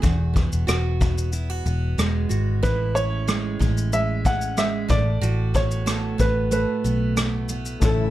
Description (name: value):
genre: acoustic pop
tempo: 92 BPM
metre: 4/4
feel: straight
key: unclear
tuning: A4 = 439 Hz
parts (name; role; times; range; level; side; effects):
- warm upright piano; melody; 0.0-8.1 s; G#4 to F#5; -26 LUFS; equal; plate reverb
- picked steel-string acoustic guitar; accompaniment; 0.0-8.1 s; E2 to F#4; -27 LUFS; right 4 dB; none
- vintage muted fingered electric bass; bass; 0.0-8.1 s; E1 to B1; -24 LUFS; equal; none
- vintage brush drum kit; drums; 0.0-8.0 s; kick drum, rim click, shaker; -24 LUFS; left 1 dB; none
- warm grand piano; accompaniment; 7.8-8.1 s; A3 to C#5; -31 LUFS; left 6 dB; none
- ethereal airy pad; sustained chords; 8.0-8.1 s; C#3 to E4; -29 LUFS; left 1 dB; ensemble chorus, built-in reverb
room: light reverb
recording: dark, warm production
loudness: -20 LUFS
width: side -14 dB against mid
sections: 0.0-2.6 A section; 2.6-8.1 B section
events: none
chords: 0.0 Eadd9; 2.6 C#m/A; 4.9 Bm7/A